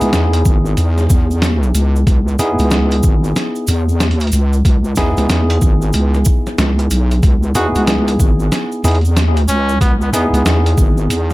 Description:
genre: glitch hop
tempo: 93 BPM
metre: 4/4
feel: swing 63% on 16ths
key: C# minor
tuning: A4 = 439 Hz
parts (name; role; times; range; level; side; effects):
- bell-like tine electric piano; stabs; 0.0-11.3 s; B3 to G#4; -20 LUFS; equal; sidechain pumping, ping-pong delay
- wobble bass; bass; 0.0-11.3 s; G#1 to E2; -14 LUFS; equal; chorus, tube saturation
- boom bap sampler-style drum kit; drums; 0.0-11.3 s; hi-hat, snare drum; -20 LUFS; equal; none
- cabasa; percussion; 0.0-11.3 s; none; -28 LUFS; right 2 dB; none
- electronic kick drum; drums; 0.5-10.9 s; none; -13 LUFS; equal; overdrive
- warm trumpet; melody; 7.6-10.4 s; B3 to F#4; -22 LUFS; equal; vintage 12-bit sampler grit, ping-pong delay
room: little or no reverb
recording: none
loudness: -12 LUFS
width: side -19 dB against mid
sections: 0.0-11.3 A section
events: none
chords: 0.0 C#m7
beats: 0.13 0.78 1.42 | 2.07 2.71 3.36 4.00 | 4.65 5.29 5.94 6.58 | 7.23 7.87 8.52 9.16 | 9.81 10.46 11.10

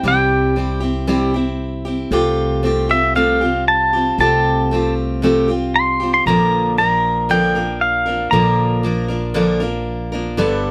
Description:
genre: folk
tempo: 116 BPM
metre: 4/4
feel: straight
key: unclear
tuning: A4 = 442 Hz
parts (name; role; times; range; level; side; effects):
- pedal steel guitar; melody; 0.0-9.1 s; E5 to C6; -18 LUFS; equal; none
- picked steel-string acoustic guitar; accompaniment; 0.0-10.7 s; G2 to Bb4; -20 LUFS; equal; none
- upright bass; bass; 0.0-10.7 s; G1 to C2; -26 LUFS; equal; none
room: moderate studio reverb, RT60 0.5 s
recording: none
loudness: -17 LUFS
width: mono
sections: 0.0-10.7 A section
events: none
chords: 0.0 C; 2.1 Fadd9/C; 6.3 Bb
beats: | 0.04 0.56 1.08 1.59 | 2.11 2.63 3.15 3.67 | 4.19 4.71 5.22 5.74 | 6.26 6.78 7.29 7.81 | 8.33 8.84 9.36 9.88 | 10.39

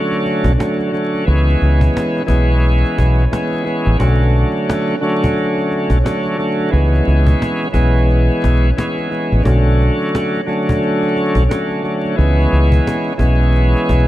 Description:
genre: hip hop, boom-bap hip-hop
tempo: 88 BPM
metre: 4/4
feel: swing 60% on 16ths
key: B dorian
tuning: A4 = 440 Hz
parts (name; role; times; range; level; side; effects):
- bright tonewheel organ; accompaniment; 0.0-14.1 s; D3 to C#4; -16 LUFS; equal; overdrive, slow rotary speaker, cassette tape, high-pass filter, low-pass filter
- cajon; drums; 0.1-14.1 s; none; -24 LUFS; equal; none
- deep dub fingered electric bass; bass; 0.4-14.1 s; A1 to C#2; -12 LUFS; equal; none
room: moderate plate reverb, RT60 3.4 s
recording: dreamy mix soaked in reverb, vinyl crackle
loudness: -13 LUFS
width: side -15 dB against mid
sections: 0.0-14.1 A section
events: none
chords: 0.0 Bm9 (rootless); 1.3 C#m7; 4.0 Bm9; 6.7 C#m7; 9.5 Bm9; 12.2 C#m7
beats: 0.59 | 1.27 1.96 2.64 3.32 | 4.00 4.68 5.36 6.04 | 6.73 7.41 8.09 8.77 | 9.46 10.14 10.82 11.50 | 12.18 12.86 13.54

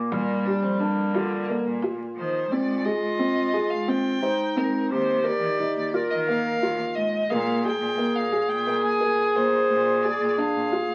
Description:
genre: contemporary instrumental, chamber music in an uneven meter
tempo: 175 BPM (eighths)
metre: 7/8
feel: straight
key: Bb mixolydian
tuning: A4 = 444 Hz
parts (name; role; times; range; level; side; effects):
- clear clarinet; second line; 0.0-10.9 s; F3 to Bb4; -28 LUFS; equal; none
- felt-muted upright piano; arpeggios; 0.0-10.9 s; Bb3 to C5; -30 LUFS; equal; none
- rich violin; melody; 0.1-10.9 s; Bb3 to Ab5; -31 LUFS; equal; none
- rich cello; bass; 0.1-10.9 s; Eb2 to Eb3; -34 LUFS; equal; none
- frame drum; percussion; 0.1-2.1 s; none; -38 LUFS; equal; none
room: wet studio reverb, RT60 0.5 s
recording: very old 78 rpm record, vinyl crackle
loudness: -24 LUFS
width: mono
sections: 0.0-2.5 A section; 2.5-10.9 B section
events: none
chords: 0.1 Bb; 2.5 Abmaj7; 4.9 Ebmaj7; 7.3 Bb7(no3)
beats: | 0.12 0.46 0.80 1.14 1.48 1.83 2.17 | 2.51 2.85 3.19 3.54 3.88 4.22 4.56 | 4.90 5.24 5.59 5.93 6.27 6.61 6.96 | 7.30 7.64 7.98 8.32 8.67 9.01 9.35 | 9.69 10.04 10.38 10.72

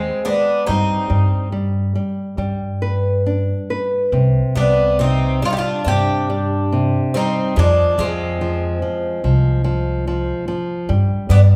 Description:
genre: fado-style ballad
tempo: 71 BPM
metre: 4/4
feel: rubato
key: C harmonic minor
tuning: A4 = 440 Hz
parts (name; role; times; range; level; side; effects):
- Irish bouzouki; melody; 0.0-11.4 s; C4 to G4; -23 LUFS; equal; none
- picked twelve-string acoustic guitar; second line; 0.0-11.4 s; Ab3 to Eb4; -27 LUFS; equal; none
- nylon-string guitar; accompaniment; 0.0-11.6 s; C3 to B4; -25 LUFS; equal; none
- upright bass; bass; 0.0-11.6 s; C2 to G2; -20 LUFS; equal; none
room: wet large studio reverb, RT60 1.3 s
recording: band playing live in one room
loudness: -18 LUFS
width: mono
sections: 0.0-11.6 A section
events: none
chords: 0.0 Ab5; 0.7 Cm/G; 2.4 G; 4.1 Csus2; 7.6 Fm; 10.9 G5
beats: | 0.68 1.51 2.37 3.25 | 4.12 5.00 5.86 6.72 | 7.57 8.40 9.24 10.06 | 10.89

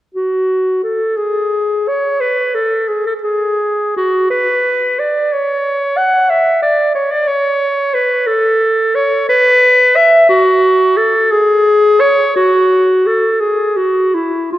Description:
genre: classical, baroque-style fantasia for unaccompanied clarinet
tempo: 54-63 BPM (dotted quarters)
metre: 6/8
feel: rubato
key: F# minor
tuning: A4 = 443 Hz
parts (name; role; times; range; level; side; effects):
- bright clarinet; solo; 0.1-14.6 s; E4 to F#5; -11 LUFS; equal; none
room: wet concert hall reverb, RT60 2.1 s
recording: worn, warbling old tape, cassette tape, warbly pitch drift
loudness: -11 LUFS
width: side -14 dB against mid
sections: 0.1-14.6 A section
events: none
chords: none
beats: | 0.13 1.17 | 2.21 3.23 | 4.32 5.33 | 6.31 7.29 | 8.29 9.30 | 10.30 11.33 | 12.36 13.41 | 14.52

